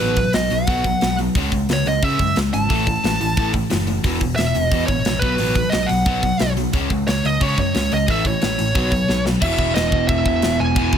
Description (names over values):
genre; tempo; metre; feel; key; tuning
punk rock; 178 BPM; 4/4; straight; E major; A4 = 440 Hz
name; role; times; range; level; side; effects
high-gain lead guitar; melody; 0.0-11.0 s; B4 to A5; -22 LUFS; right 2 dB; distortion, digital delay
crunchy overdriven guitar; riff; 0.0-11.0 s; E2 to C#4; -21 LUFS; left 1 dB; none
picked electric bass; bass; 0.0-11.0 s; E1 to C#3; -24 LUFS; equal; none
tight metal drum kit; drums; 0.0-11.0 s; crash cymbal, hi-hat, kick drum, snare drum; -22 LUFS; equal; none
room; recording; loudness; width
little or no reverb; none; -16 LUFS; side -8 dB against mid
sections
0.0-9.4 A section; 9.4-11.0 B section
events
drum fill 9.1-9.4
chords
0.0 B5; 1.4 C#m; 2.7 A5; 4.0 E5; 5.2 B5; 6.7 C#5; 8.1 A; 8.8 B5; 9.4 E